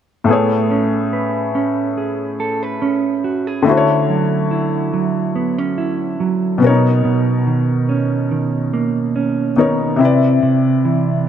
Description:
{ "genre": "R&B", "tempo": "71 BPM", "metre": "4/4", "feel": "swing 54% on 16ths", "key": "A major", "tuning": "A4 = 442 Hz", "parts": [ { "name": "felt-muted upright piano", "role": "accompaniment", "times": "0.2-11.3 s", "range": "A2 to D5", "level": "-18 LUFS", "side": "left 5 dB", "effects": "none" }, { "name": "mellow electric guitar", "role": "arpeggios", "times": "0.3-11.3 s", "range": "B2 to B4", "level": "-17 LUFS", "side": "right 4 dB", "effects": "none" } ], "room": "moderate lush hall reverb, RT60 2.6 s", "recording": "dark, warm production", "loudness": "-14 LUFS", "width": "side -9 dB against mid", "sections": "0.3-11.3 A section", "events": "none", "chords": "0.3 Amaj9; 3.7 Dmaj9; 6.6 Bmaj9; 10.0 Cmaj9", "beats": "| 0.28 1.13 1.98 2.82 | 3.67 4.51 5.36 6.20 | 7.05 7.89 8.74 9.58 | 10.43 11.27" }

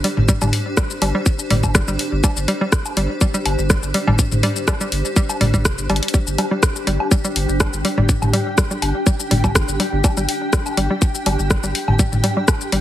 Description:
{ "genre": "minimal techno", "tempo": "123 BPM", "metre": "4/4", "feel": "swing 53% on 16ths", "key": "unclear", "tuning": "A4 = 439 Hz", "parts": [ { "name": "hollow square pluck", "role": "riff", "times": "0.0-12.8 s", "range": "G3", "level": "-24 LUFS", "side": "equal", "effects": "chorus, sidechain pumping, ping-pong delay" }, { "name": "garage drum kit", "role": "drums", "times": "0.0-12.8 s", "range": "hi-hat, rim click, shaker", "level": "-22 LUFS", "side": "left 1 dB", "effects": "none" }, { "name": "granular cloud pad", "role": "texture", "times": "0.0-12.8 s", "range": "D4 to G5", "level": "-26 LUFS", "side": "left 1 dB", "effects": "built-in reverb, sidechain pumping" }, { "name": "saturated sub bass", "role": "bass", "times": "0.2-12.8 s", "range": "F1 to G1", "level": "-22 LUFS", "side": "equal", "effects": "sidechain pumping" }, { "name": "electronic toms and woodblock", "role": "percussion", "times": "0.2-12.6 s", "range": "none", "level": "-21 LUFS", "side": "equal", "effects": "none" }, { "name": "electronic kick drum", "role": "drums", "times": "0.3-12.6 s", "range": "none", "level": "-17 LUFS", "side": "equal", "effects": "none" }, { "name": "flickering grainy texture", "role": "texture", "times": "6.5-12.8 s", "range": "G5", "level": "-32 LUFS", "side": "right 1 dB", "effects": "built-in reverb, sidechain pumping" } ], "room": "light reverb", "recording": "heavily compressed radio sound", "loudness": "-16 LUFS", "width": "side -12 dB against mid", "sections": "0.0-12.8 A section", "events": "drum fill 5.9", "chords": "0.0 G5", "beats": "| 0.29 0.77 1.26 1.75 | 2.24 2.73 3.21 3.70 | 4.19 4.68 5.16 5.65 | 6.14 6.63 7.12 7.60 | 8.09 8.58 9.07 9.55 | 10.04 10.53 11.02 11.51 | 11.99 12.48" }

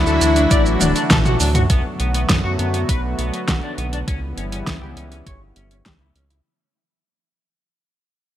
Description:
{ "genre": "synthwave", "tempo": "101 BPM", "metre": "4/4", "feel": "straight", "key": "B minor", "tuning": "A4 = 439 Hz", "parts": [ { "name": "expressive portamento lead", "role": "melody", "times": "0.0-0.7 s", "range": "E4", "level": "-22 LUFS", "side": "left 2 dB", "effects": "chorus, digital delay" }, { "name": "string machine, violins", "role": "second line", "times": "0.0-0.7 s", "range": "E4", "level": "-26 LUFS", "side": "left 2 dB", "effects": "ensemble chorus, cassette tape, digital delay" }, { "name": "chorused pulse-width pad", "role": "sustained chords", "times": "0.0-6.4 s", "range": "C#3 to F#4", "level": "-25 LUFS", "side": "equal", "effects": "sidechain pumping" }, { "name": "round analog bass", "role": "bass", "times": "0.0-6.4 s", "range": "D1 to F#2", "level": "-22 LUFS", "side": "equal", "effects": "none" }, { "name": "electric guitar at the edge of break-up", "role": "riff", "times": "0.1-6.3 s", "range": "B3 to D5", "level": "-26 LUFS", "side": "left 2 dB", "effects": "lush chorus, low-pass filter, digital delay" }, { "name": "pop drum kit", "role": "drums", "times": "0.1-6.4 s", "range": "hi-hat, shaker, snare drum, toms", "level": "-20 LUFS", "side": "equal", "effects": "overdrive" }, { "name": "electronic kick drum", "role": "drums", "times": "0.5-6.0 s", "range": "none", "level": "-20 LUFS", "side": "equal", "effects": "overdrive" } ], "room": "moderate plate reverb, RT60 3.0 s", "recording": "bright 1980s-style digital production", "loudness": "-16 LUFS", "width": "side -12 dB against mid", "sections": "0.0-1.7 A section; 1.7-6.5 B section", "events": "drum fill 0.8-1.7; fade-out 1.7-6.5; filter sweep on clean electric guitar 1.7-6.5", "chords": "0.0 Dadd9; 1.7 Bm7; 4.1 C#m7b5", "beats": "0.51 1.10 | 1.70 2.29 2.89 3.48 | 4.08 4.67 5.26 5.86" }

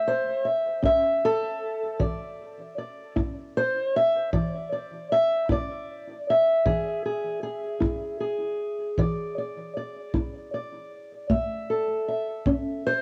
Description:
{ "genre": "acoustic country blues, solo or duo", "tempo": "52 BPM (dotted quarters)", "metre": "12/8", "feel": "straight", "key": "unclear", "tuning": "A4 = 440 Hz", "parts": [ { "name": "fingerpicked steel-string acoustic guitar", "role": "melody", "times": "0.0-13.0 s", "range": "E3 to E5", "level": "-27 LUFS", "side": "equal", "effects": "cassette tape, analog delay" }, { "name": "kick drum", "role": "drums", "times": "0.8-12.6 s", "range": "none", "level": "-31 LUFS", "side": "equal", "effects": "none" } ], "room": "light reverb", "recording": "home recording on cassette", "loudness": "-26 LUFS", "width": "mono", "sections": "0.0-13.0 A section", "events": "none", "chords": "0.0 A; 2.0 E7; 11.3 A", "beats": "0.84 | 2.00 3.17 4.33 5.49 | 6.66 7.82 8.98 10.14 | 11.30 12.46" }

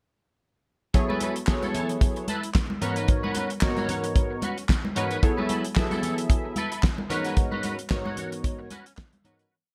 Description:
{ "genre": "early-eighties boogie funk", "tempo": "112 BPM", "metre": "4/4", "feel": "swing 56% on 16ths", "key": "unclear", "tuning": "A4 = 437 Hz", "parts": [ { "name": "funky polysynth comp", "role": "accompaniment", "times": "0.9-9.5 s", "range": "G#2 to E5", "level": "-31 LUFS", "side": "equal", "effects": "chorus" }, { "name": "clean electric guitar", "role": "riff", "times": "0.9-9.5 s", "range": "C#4 to C#5", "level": "-36 LUFS", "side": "equal", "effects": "ensemble chorus" }, { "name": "damped 70s drum kit", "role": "drums", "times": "0.9-9.5 s", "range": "handclaps, hi-hat, kick drum, snare drum", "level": "-27 LUFS", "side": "equal", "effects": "none" }, { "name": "congas", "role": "percussion", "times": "0.9-9.4 s", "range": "none", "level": "-36 LUFS", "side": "equal", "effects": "none" } ], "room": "light reverb, studio ambience", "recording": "none", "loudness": "-26 LUFS", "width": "mono", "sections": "0.9-9.5 breakdown", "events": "fade-out 7.4-9.5", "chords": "0.9 F#m11; 2.8 G#m11; 5.2 F#m11; 7.1 G#m11", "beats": "| 0.94 1.48 2.02 2.55 | 3.09 3.62 4.16 4.70 | 5.23 5.77 6.30 6.84 | 7.37 7.91 8.45 8.98" }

